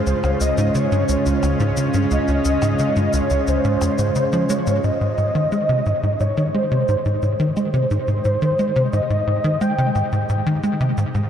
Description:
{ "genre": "ambient, sequencer-driven space music", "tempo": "88 BPM", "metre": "4/4", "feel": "straight", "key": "unclear", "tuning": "A4 = 441 Hz", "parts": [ { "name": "breathy flute-like synth lead", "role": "melody", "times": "0.0-10.1 s", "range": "C5 to G5", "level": "-22 LUFS", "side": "equal", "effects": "ensemble chorus, analog delay" }, { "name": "lush unison pad", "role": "sustained chords", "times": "0.0-11.3 s", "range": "Db3 to Eb5", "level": "-24 LUFS", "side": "right 1 dB", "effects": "chorus" }, { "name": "tight sequencer bass", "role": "riff", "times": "0.0-11.3 s", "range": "Db2 to Ab3", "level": "-20 LUFS", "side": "equal", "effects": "ensemble chorus, analog delay" }, { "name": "cabasa and percussion blips", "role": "percussion", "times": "0.1-11.3 s", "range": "none", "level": "-36 LUFS", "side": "left 3 dB", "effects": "analog delay" } ], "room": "wet huge ambient reverb, RT60 7.6 s", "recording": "dark, warm production", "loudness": "-17 LUFS", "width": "side -9 dB against mid", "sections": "0.0-4.8 A section; 4.8-11.3 B section", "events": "none", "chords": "0.0 Dbmaj7; 4.8 Abmaj7" }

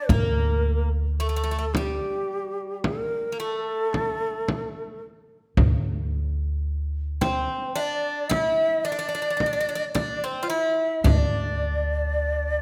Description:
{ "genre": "Turkish makam ensemble", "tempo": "110 BPM (eighths)", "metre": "10/8", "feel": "straight", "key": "D makam ussak", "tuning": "A4 = 439 Hz", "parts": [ { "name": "breathy mellow ney", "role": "melody", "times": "0.0-12.6 s", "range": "G4 to E5", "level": "-29 LUFS", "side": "equal", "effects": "none" }, { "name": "Greek bouzouki", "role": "second line", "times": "0.0-12.6 s", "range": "G3 to F4", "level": "-33 LUFS", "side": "equal", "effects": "none" }, { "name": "upright bass", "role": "bass", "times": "0.1-12.6 s", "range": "D2", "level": "-27 LUFS", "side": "equal", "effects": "none" }, { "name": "darbuka", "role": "percussion", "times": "0.1-12.3 s", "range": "none", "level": "-30 LUFS", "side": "equal", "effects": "none" }, { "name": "frame drum", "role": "percussion", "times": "0.1-11.3 s", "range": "none", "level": "-29 LUFS", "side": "equal", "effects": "none" } ], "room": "moderate recital hall reverb, RT60 1.6 s", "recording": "close, detailed microphones", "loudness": "-25 LUFS", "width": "mono", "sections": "0.0-12.6 A section", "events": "none", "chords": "none" }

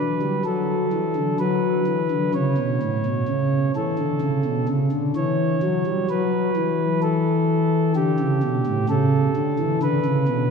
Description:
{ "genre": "classical, chorale-style piece for pipe organ", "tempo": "64 BPM", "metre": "4/4", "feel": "rubato", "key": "D major", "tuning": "A4 = 436 Hz", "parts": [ { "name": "chamber organ, principal", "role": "solo", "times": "0.0-10.5 s", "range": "A2 to C#5", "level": "-19 LUFS", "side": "equal", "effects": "none" } ], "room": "wet church reverb, RT60 3.5 s", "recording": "recorded in a church or concert hall", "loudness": "-19 LUFS", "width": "side -5 dB against mid", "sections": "0.0-10.5 A section", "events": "none", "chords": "0.0 D; 2.4 A" }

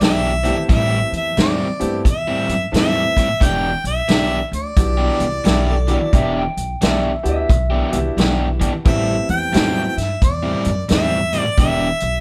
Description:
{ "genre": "electric blues shuffle", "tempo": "88 BPM", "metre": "4/4", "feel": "swing 64% on 8ths", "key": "E minor", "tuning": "A4 = 440 Hz", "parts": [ { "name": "clear harmonica", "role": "melody", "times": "0.0-12.2 s", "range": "D5 to G5", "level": "-24 LUFS", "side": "equal", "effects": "none" }, { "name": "crunchy overdriven guitar", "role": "riff", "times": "0.0-11.9 s", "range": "A2 to G4", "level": "-24 LUFS", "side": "equal", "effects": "none" }, { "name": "upright bass", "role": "bass", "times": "0.0-12.2 s", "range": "E1 to G2", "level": "-25 LUFS", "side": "equal", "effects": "none" }, { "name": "vintage drum kit", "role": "drums", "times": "0.0-12.1 s", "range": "hi-hat, kick drum, snare drum", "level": "-20 LUFS", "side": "equal", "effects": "none" }, { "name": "bright upright piano", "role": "accompaniment", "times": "0.4-9.9 s", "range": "F#3 to A4", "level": "-28 LUFS", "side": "equal", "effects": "none" }, { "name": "electric guitar through a small old amp", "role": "second line", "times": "5.5-8.6 s", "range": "E4 to G5", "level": "-27 LUFS", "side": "equal", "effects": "none" } ], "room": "moderate studio reverb, RT60 0.5 s", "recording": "band playing live in one room", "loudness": "-18 LUFS", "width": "mono", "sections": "0.0-12.2 A section", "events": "none", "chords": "0.0 Em7; 0.7 Am7; 3.4 Em7; 8.8 Am7; 11.6 Em7" }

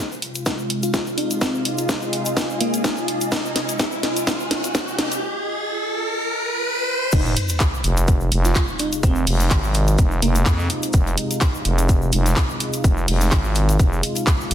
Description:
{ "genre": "bass house", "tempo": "126 BPM", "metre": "4/4", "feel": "swing 55% on 16ths", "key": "F minor", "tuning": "A4 = 437 Hz", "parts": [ { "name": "sweeping resonant pad", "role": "sustained chords", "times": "0.3-14.5 s", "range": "C3 to F4", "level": "-28 LUFS", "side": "equal", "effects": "chorus, sidechain pumping" }, { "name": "riser and sub drop", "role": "sound effects", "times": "0.0-9.0 s", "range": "none", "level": "-26 LUFS", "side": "equal", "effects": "none" }, { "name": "ethereal airy pad", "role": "texture", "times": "0.3-5.2 s", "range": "F4 to Ab5", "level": "-28 LUFS", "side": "equal", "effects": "ensemble chorus, built-in reverb, phaser, sidechain pumping" }, { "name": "egg shaker", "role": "percussion", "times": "0.1-14.5 s", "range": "none", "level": "-33 LUFS", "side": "left 5 dB", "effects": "none" }, { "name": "garage drum kit", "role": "drums", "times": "0.2-14.5 s", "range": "crash cymbal, handclaps, hi-hat, snare drum", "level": "-24 LUFS", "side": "equal", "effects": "studio reverb, soft clipping on snare" }, { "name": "electronic kick drum", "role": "drums", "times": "0.5-14.4 s", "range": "none", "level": "-22 LUFS", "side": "equal", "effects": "high-pass filter on kick, studio reverb, high-pass filter on room" }, { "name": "bell-like FM electric piano", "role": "melody", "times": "0.8-3.0, 7.1-10.6 s", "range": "Bb3 to F4", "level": "-26 LUFS", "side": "equal", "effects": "chorus, ping-pong delay" }, { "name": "growling FM bass", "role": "bass", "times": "7.1-14.5 s", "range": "F1 to F2", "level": "-19 LUFS", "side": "equal", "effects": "sidechain pumping" }, { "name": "deep reggae drum kit", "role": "drums", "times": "7.1-14.5 s", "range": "hi-hat, shaker, snare drum", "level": "-34 LUFS", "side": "left 3 dB", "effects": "none" } ], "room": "light reverb, small room ambience", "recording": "dense, heavily limited modern master", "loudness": "-18 LUFS", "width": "side -10 dB against mid", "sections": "0.0-7.1 A section; 7.1-14.5 B section", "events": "build-up 0.0-7.1; drum fill 0.0-5.2; riser 0.0-7.1; drop 7.1-14.5; impact 7.1-9.0", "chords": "0.0 Fm7" }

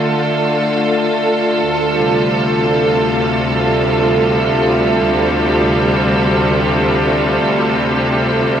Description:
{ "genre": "ambient", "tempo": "free time", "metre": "none", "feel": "none", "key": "unclear", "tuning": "A4 = 445 Hz", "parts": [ { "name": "clear symphonic string section", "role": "sustained chords", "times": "0.0-8.6 s", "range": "D2 to A4", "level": "-13 LUFS", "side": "equal", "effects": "none" }, { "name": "overtone-sweeping drone", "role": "drone", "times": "0.0-8.6 s", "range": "D3 to A3", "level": "-20 LUFS", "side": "equal", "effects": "chorus, built-in reverb" } ], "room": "wet huge ambient reverb, RT60 7.8 s", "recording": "none", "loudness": "-12 LUFS", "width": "side -9 dB against mid", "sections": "0.0-8.6 A section", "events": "none", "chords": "0.0 Dm; 1.6 Fadd9/D" }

